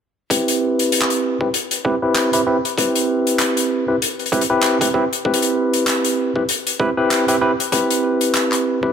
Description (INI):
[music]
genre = glitch hop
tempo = 97 BPM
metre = 4/4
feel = swing 58% on 16ths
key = unclear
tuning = A4 = 440 Hz
[part]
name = barky tine electric piano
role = stabs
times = 0.3-8.9 s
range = C4 to B4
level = -17 LUFS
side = equal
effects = auto-pan, sidechain pumping, low-pass filter, ping-pong delay
[part]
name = electronic kick drum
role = drums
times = 0.3-8.9 s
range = none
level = -24 LUFS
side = equal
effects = overdrive, high-pass filter on kick
[part]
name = open jazz drum kit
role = drums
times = 0.3-8.6 s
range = handclaps, hi-hat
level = -20 LUFS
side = left 2 dB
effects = none
[sound]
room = light reverb, small room ambience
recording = none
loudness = -16 LUFS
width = side -7 dB against mid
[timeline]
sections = 0.3-8.9 A section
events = filter sweep on tine electric piano 0.3-8.9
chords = 0.3 Cmaj7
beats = | 0.30 0.92 1.54 2.16 | 2.78 3.40 4.01 4.63 | 5.25 5.87 6.49 7.11 | 7.72 8.34